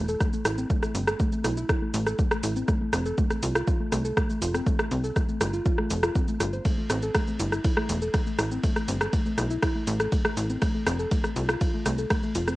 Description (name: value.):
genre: melodic techno.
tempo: 121 BPM.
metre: 4/4.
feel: straight.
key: A minor.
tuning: A4 = 435 Hz.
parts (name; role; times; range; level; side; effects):
soft round pluck; arpeggios; 0.0-12.6 s; A3 to C5; -30 LUFS; equal; chorus, sidechain pumping, analog delay.
tight sequencer bass; bass; 0.0-12.6 s; E1 to C2; -28 LUFS; equal; tube saturation, sidechain pumping.
deep house drum kit; drums; 0.1-12.6 s; hi-hat, ride cymbal, rim click, shaker; -29 LUFS; equal; overdrive, studio reverb, cassette tape.
electronic kick drum; drums; 0.2-12.2 s; none; -26 LUFS; equal; overdrive, studio reverb, cassette tape.
room: light reverb.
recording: home recording on cassette.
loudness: -24 LUFS.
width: side -18 dB against mid.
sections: 0.0-12.6 A section.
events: none.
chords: 0.0 Am; 2.7 F; 6.7 Am; 10.6 F.